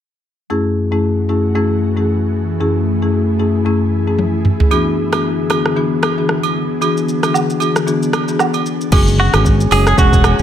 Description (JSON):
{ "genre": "afrobeats", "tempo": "114 BPM", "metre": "4/4", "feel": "swing 58% on 16ths", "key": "F# minor", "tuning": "A4 = 440 Hz", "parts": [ { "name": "marimba with medium mallets", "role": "accompaniment", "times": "0.5-10.4 s", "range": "F#2 to G#4", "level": "-16 LUFS", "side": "left 2 dB", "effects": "none" }, { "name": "ethereal airy pad", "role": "sustained chords", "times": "0.8-10.4 s", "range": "D3 to G#5", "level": "-22 LUFS", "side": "equal", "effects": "ensemble chorus, built-in reverb" }, { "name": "afro-pop drum kit", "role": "drums", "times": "4.2-10.4 s", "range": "crash cymbal, hi-hat, kick drum, rim click, shaker, toms", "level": "-17 LUFS", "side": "right 1 dB", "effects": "none" }, { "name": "agogo bells and woodblock", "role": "percussion", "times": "4.7-10.4 s", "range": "none", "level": "-22 LUFS", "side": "right 9 dB", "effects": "none" }, { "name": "modern bright fingered electric bass", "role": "bass", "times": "8.9-10.4 s", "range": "E1 to G#1", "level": "-14 LUFS", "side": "right 1 dB", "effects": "none" }, { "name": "direct-recorded clean electric guitar", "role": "melody", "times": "9.2-10.4 s", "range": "F#4 to G#4", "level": "-16 LUFS", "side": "right 2 dB", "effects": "wide subtle chorus, ping-pong delay" } ], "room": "little or no reverb", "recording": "none", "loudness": "-13 LUFS", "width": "side -10 dB against mid", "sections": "0.5-8.9 A section; 8.9-10.4 B section", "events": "drum fill 4.2-4.7", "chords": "0.5 F#m9; 4.7 E7; 8.9 F#sus2" }